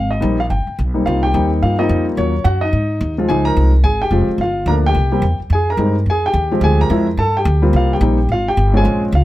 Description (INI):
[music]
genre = jazz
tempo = 215 BPM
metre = 4/4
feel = swing 61% on 8ths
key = unclear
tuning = A4 = 444 Hz
[part]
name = warm grand piano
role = melody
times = 0.0-9.2 s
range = F3 to Bb5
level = -16 LUFS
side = left 1 dB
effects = none
[part]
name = upright bass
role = bass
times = 0.0-9.2 s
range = F1 to Ab2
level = -16 LUFS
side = equal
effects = none
[sound]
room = light reverb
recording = none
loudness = -13 LUFS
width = side -15 dB against mid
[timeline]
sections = 0.0-1.1 A section; 1.1-9.2 B section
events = none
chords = 0.5 G; 1.1 Cm7; 2.2 Ebm7; 2.7 Ab5; 3.3 Dbmaj9; 4.4 Gm7; 5.0 C; 5.5 Fm7; 6.6 Dm7b5; 7.2 G5; 7.7 C7(no3)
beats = 0.22 0.50 0.78 | 1.05 1.33 1.61 1.89 | 2.17 2.45 2.73 3.00 | 3.28 3.56 3.84 4.12 | 4.40 4.68 4.95 5.23 | 5.51 5.79 6.07 6.35 | 6.63 6.90 7.18 7.46 | 7.74 8.02 8.30 8.57 | 8.85 9.13